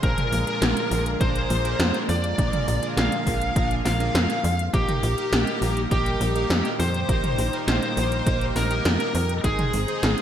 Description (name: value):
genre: synthwave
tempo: 102 BPM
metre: 4/4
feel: straight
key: unclear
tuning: A4 = 440 Hz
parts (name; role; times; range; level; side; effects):
- smooth overdriven lead guitar; melody; 0.0-10.2 s; G4 to F5; -27 LUFS; left 1 dB; ping-pong delay
- string machine, violins; second line; 0.0-10.2 s; G4 to F5; -35 LUFS; equal; ensemble chorus, ping-pong delay
- lush unison pad; sustained chords; 0.0-10.2 s; Bb2 to Ab4; -32 LUFS; equal; chorus, sidechain pumping
- chorused polysynth; stabs; 0.0-10.2 s; Bb2 to C5; -31 LUFS; right 3 dB; cassette tape, ping-pong delay
- tight sequencer bass; bass; 0.0-10.2 s; Ab1 to F2; -25 LUFS; equal; sidechain pumping
- 80s electronic pad drums; drums; 0.0-10.2 s; hi-hat, snare drum, toms; -27 LUFS; equal; gated reverb on snare and toms, overdrive, gated reverb
- electronic kick drum; drums; 0.0-9.6 s; none; -26 LUFS; equal; overdrive
room: light reverb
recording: bright 1980s-style digital production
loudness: -20 LUFS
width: side -10 dB against mid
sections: 0.0-10.2 A section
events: none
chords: 0.0 Bb7; 4.7 Eb/Bb; 9.4 Ab